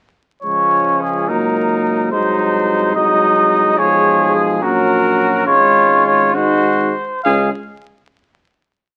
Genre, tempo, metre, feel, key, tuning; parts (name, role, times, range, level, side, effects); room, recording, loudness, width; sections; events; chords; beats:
classical, brass quintet; 65-72 BPM (dotted quarters); 6/8; straight; Db major; A4 = 436 Hz
mellow trumpet; melody; 0.4-7.5 s; Ab4 to F5; -18 LUFS; equal
warm trumpet; second line; 0.4-7.5 s; Db4 to Ab4; -21 LUFS; equal
clear euphonium; accompaniment; 0.4-7.5 s; F3 to Ab3; -23 LUFS; equal
dark French horn; accompaniment; 0.4-7.5 s; Ab3 to Eb4; -24 LUFS; equal
dark bass trombone; bass; 0.4-7.5 s; Ab1 to Db2; -28 LUFS; equal
moderate studio reverb, RT60 0.8 s; very old 78 rpm record, vinyl crackle; -15 LUFS; mono
0.4-7.2 theme; 7.2-9.0 final chord
0.4 Db; 1.3 Ebm7/Db; 2.1 Ab7/C; 3.8 Db7/Cb; 4.6 Gb/Bb; 5.5 Db/Ab; 6.3 Ab7; 7.2 Db5
| 0.44 1.29 | 2.12 2.96 | 3.79 4.62 | 5.47 6.34 | 7.25